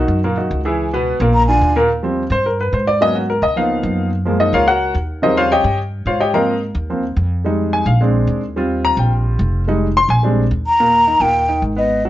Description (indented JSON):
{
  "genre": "jazz",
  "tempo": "216 BPM",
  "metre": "4/4",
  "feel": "straight",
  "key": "Eb major",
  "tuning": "A4 = 441 Hz",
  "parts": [
    { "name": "warm concert grand piano", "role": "accompaniment", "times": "0.0-12.1 s", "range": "A#2 to C6", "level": "-16 LUFS", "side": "equal", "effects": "none" },
    { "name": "upright bass", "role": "bass", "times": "0.0-12.1 s", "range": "F1 to Ab2", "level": "-19 LUFS", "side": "equal", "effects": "none" },
    { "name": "mellow hollow concert flute", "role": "melody", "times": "1.3-1.8, 10.7-12.0 s", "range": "Eb5 to A#5", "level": "-14 LUFS", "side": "left 1 dB", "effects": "none" }
  ],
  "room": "moderate club reverb, RT60 0.6 s",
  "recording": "nothing above 7.8 kHz",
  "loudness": "-14 LUFS",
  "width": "side -14 dB against mid",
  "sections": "0.0-1.9 A section; 1.9-10.8 A section; 10.8-12.1 B section",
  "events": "flute solo 0.0-1.9; grand piano solo 1.9-10.8",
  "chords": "0.0 Bmaj9 (rootless); 0.8 C#m7; 1.3 A#7; 1.9 Eb69; 3.0 Abm11; 3.6 Db13; 4.1 Gbmaj9; 5.2 Eb13; 6.3 Ab69; 7.4 Fm7; 8.0 Bb7; 8.6 Eb69; 9.7 Fm7; 10.2 Bb13; 10.8 Eb"
}